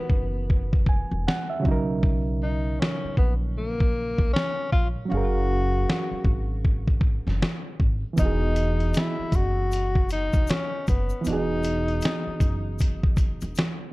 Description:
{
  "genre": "lo-fi hip hop",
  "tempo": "78 BPM",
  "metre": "4/4",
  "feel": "swing 60% on 16ths",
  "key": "E lydian",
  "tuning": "A4 = 441 Hz",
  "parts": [
    { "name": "breathy tenor saxophone", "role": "melody", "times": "0.0-12.8 s", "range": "A#3 to F#4", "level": "-30 LUFS", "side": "left 2 dB", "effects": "low-pass filter, tape echo" },
    { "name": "barky reed electric piano", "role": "accompaniment", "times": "0.0-13.9 s", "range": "C#3 to G#5", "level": "-30 LUFS", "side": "right 3 dB", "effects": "overdrive, cassette tape, low-pass filter" },
    { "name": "upright bass", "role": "bass", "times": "0.1-13.6 s", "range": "E1 to B1", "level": "-27 LUFS", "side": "equal", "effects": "none" },
    { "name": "dusty soul sampler-style drum kit", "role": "drums", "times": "0.1-13.8 s", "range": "hi-hat, kick drum, snare drum", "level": "-23 LUFS", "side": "equal", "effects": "none" },
    { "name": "tube shaker", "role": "percussion", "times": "8.2-13.8 s", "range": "none", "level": "-46 LUFS", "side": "left 8 dB", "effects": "none" }
  ],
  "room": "little or no reverb",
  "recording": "dark, warm production",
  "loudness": "-22 LUFS",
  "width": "side -21 dB against mid",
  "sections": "0.0-13.9 A section",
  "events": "break 0.0-8.2",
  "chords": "0.0 Emaj9; 1.6 Bmaj9; 5.1 F#maj9; 8.2 Emaj9",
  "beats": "0.49 1.26 | 2.03 2.80 3.57 4.34 | 5.11 5.88 6.64 7.42 | 8.18 8.95 9.72 10.49 | 11.26 12.03 12.80 13.57"
}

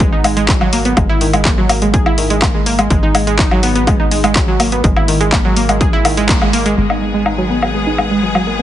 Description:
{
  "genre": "melodic techno",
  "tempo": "124 BPM",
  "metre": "4/4",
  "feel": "straight",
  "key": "G# minor",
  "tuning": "A4 = 440 Hz",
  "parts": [
    { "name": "analog pluck", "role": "arpeggios", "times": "0.0-8.6 s", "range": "D#3 to G#4", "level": "-15 LUFS", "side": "right 1 dB", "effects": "chorus, sidechain pumping, digital delay" },
    { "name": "tight sequencer bass", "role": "bass", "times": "0.0-8.6 s", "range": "G#1", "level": "-20 LUFS", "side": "equal", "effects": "sidechain pumping" },
    { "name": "electronic kick drum", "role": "drums", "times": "0.0-6.4 s", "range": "none", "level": "-14 LUFS", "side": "equal", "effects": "overdrive" },
    { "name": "techno drum kit", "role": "drums", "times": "0.0-8.4 s", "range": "handclaps, hi-hat, woodblock", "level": "-17 LUFS", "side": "left 1 dB", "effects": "overdrive, low-pass filter on hats, low-pass filter on snare, low-pass filter on perc" },
    { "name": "bright studio string section", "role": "sustained chords", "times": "6.8-8.6 s", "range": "D#3 to G#4", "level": "-20 LUFS", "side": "left 2 dB", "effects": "sidechain pumping" }
  ],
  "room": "moderate recital hall reverb, RT60 1.5 s, digital ambience",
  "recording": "heavily compressed radio sound, nothing above 10.4 kHz",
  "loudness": "-11 LUFS",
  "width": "side -12 dB against mid",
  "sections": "0.0-6.8 A section; 6.8-8.6 B section",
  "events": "band accent 6.3; filter sweep on synth pluck 6.8-8.6",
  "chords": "0.0 N.C.; 6.8 G#m",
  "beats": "0.00 0.48 | 0.97 1.45 1.94 2.42 | 2.90 3.39 3.87 4.36 | 4.84 5.32 5.81 6.29 | 6.78 7.26 7.74 8.23"
}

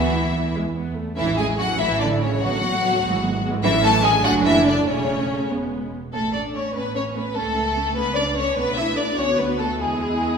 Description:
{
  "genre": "quick classical-period movement for string orchestra",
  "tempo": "97 BPM (dotted quarters)",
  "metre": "6/8",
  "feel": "straight",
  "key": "A major",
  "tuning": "A4 = 440 Hz",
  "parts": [
    { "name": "warm symphonic violin section", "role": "melody", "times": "0.0-10.4 s", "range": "G#3 to A5", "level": "-25 LUFS", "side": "left 3 dB", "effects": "none" },
    { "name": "warm symphonic violin section", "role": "second line", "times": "0.0-10.4 s", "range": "C#4 to E5", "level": "-24 LUFS", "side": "left 2 dB", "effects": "none" },
    { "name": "warm studio viola section", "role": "accompaniment", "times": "0.0-10.4 s", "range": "D3 to F#4", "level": "-26 LUFS", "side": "right 2 dB", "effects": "none" },
    { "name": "rich symphonic cello section", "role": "bass", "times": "0.0-10.4 s", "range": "C#3 to E4", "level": "-27 LUFS", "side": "right 3 dB", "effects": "none" },
    { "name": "warm symphonic double bass section", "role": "bass", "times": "0.0-10.4 s", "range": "E1 to E2", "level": "-28 LUFS", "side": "right 3 dB", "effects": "none" }
  ],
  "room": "wet recital hall reverb, RT60 1.7 s",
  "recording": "recorded in a church or concert hall",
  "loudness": "-19 LUFS",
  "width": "side -6 dB against mid",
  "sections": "0.0-6.1 A section; 6.1-10.4 B section",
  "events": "none",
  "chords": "0.0 Esus4; 1.2 A; 2.4 Bm7/A; 3.0 E/G#; 3.6 A; 4.2 D/F#; 4.9 A/E; 5.5 E; 6.1 A; 7.4 A/C#; 8.6 Bm7; 9.2 Bm/D; 9.8 E",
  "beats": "0.54 | 1.17 1.79 | 2.42 3.03 | 3.63 4.24 | 4.87 5.50 | 6.14 6.75 | 7.36 7.97 | 8.57 9.18 | 9.80"
}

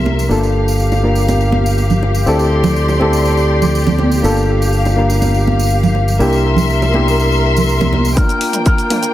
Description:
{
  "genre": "nu-disco, nu disco",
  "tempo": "122 BPM",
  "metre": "4/4",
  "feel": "straight",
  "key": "G dorian",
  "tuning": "A4 = 440 Hz",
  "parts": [
    { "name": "overdriven reed electric piano", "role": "accompaniment", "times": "0.0-9.1 s", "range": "Bb3 to Bb4", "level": "-18 LUFS", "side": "equal", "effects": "dub echo" },
    { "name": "muted studio string section", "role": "sustained chords", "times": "0.0-9.1 s", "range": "Bb3 to C6", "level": "-19 LUFS", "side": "left 2 dB", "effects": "sidechain pumping" },
    { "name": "fingered electric bass with an envelope filter", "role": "bass", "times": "0.0-8.1 s", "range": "G1 to D2", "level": "-15 LUFS", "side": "equal", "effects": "none" },
    { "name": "bongos, congas and tambourine", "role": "percussion", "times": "0.1-8.1 s", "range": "none", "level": "-20 LUFS", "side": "right 3 dB", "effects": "dub echo" },
    { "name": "electric guitar with an envelope filter", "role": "melody", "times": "8.2-9.1 s", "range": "Bb4", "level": "-19 LUFS", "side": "left 1 dB", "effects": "tape echo" },
    { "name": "electronic kick drum", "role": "drums", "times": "8.2-8.8 s", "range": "none", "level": "-13 LUFS", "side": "equal", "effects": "none" },
    { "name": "house drum kit", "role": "drums", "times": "8.2-9.1 s", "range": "hi-hat, shaker, toms", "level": "-22 LUFS", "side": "equal", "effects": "high-pass filter on hats, high-pass filter on toms, high-pass filter on perc, high-pass filter on room" }
  ],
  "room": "moderate spring reverb, RT60 1.6 s",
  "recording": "echo-heavy mix",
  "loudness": "-11 LUFS",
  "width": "side -13 dB against mid",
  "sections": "0.0-8.2 A section",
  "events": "drum fill 8.2-9.1",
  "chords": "0.3 Gm7; 2.3 D7sus4; 4.2 Gm7; 6.2 C7; 8.2 Gm7",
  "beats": "| 0.30 0.79 1.28 1.78 | 2.27 2.76 3.25 3.74 | 4.24 4.73 5.22 5.71 | 6.20 6.70 7.19 7.68 | 8.17 8.66"
}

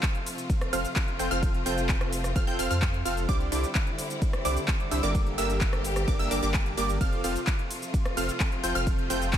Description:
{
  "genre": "EDM, festival progressive house",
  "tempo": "129 BPM",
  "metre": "4/4",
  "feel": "straight",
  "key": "F major",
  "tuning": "A4 = 440 Hz",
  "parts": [
    { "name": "clear studio string section", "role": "sustained chords", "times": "0.0-9.4 s", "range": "C3 to G4", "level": "-35 LUFS", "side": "left 1 dB", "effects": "sidechain pumping" },
    { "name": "big-room dance drum kit", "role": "drums", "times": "0.0-9.4 s", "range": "handclaps, hi-hat, ride cymbal, rim click, shaker", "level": "-34 LUFS", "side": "left 1 dB", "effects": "none" },
    { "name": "electronic kick drum", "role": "drums", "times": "0.0-9.4 s", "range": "none", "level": "-27 LUFS", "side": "equal", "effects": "none" },
    { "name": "wide unison pluck", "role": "arpeggios", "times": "0.7-9.4 s", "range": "D6 to G6", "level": "-34 LUFS", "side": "right 2 dB", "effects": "phaser, sidechain pumping, tape echo" },
    { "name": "supersaw stab", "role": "riff", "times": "0.7-9.4 s", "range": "Bb3 to G5", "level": "-32 LUFS", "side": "right 1 dB", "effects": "sidechain pumping, tape echo" },
    { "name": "saturated sub bass", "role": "bass", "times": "0.7-9.4 s", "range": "F1 to F2", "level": "-31 LUFS", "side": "equal", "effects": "sidechain pumping" }
  ],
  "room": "digital ambience",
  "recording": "none",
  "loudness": "-25 LUFS",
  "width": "side -10 dB against mid",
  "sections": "0.0-9.4 A section",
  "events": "none",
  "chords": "0.0 F; 3.3 Cadd9; 5.1 Gm; 7.0 F",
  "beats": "0.03 0.50 0.96 | 1.43 1.89 2.36 2.82 | 3.29 3.75 4.22 4.68 | 5.15 5.61 6.08 6.54 | 7.01 7.47 7.94 8.40 | 8.87 9.33"
}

